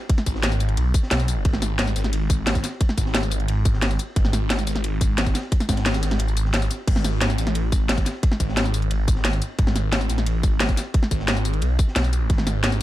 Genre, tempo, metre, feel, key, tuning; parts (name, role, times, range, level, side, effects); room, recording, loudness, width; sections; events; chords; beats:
dark technical drum and bass; 177 BPM; 4/4; straight; G# phrygian; A4 = 440 Hz
crunchy breakbeat drum kit; drums; 0.1-12.8 s; ride cymbal, snare drum; -36 LUFS; equal
drum and bass drum kit; drums; 0.1-12.8 s; crash cymbal, hi-hat, snare drum, tambourine; -25 LUFS; equal; overdrive
electronic kick drum; drums; 0.1-12.4 s; -20 LUFS; equal; overdrive
phased detuned saw bass; bass; 0.3-12.8 s; G#1 to B1; -22 LUFS; equal; phaser, overdrive
small room reverb; dark, warm production; -19 LUFS; side -15 dB against mid
0.0-12.8 A section
kick drops out 6.2-6.9
| 0.10 0.43 0.77 1.11 | 1.45 1.79 2.13 2.47 | 2.81 3.15 3.48 3.82 | 4.16 4.50 4.84 5.18 | 5.52 5.86 6.20 6.54 | 6.88 7.21 7.55 7.89 | 8.23 8.57 8.91 9.25 | 9.59 9.93 10.26 10.60 | 10.94 11.28 11.62 11.96 | 12.30 12.64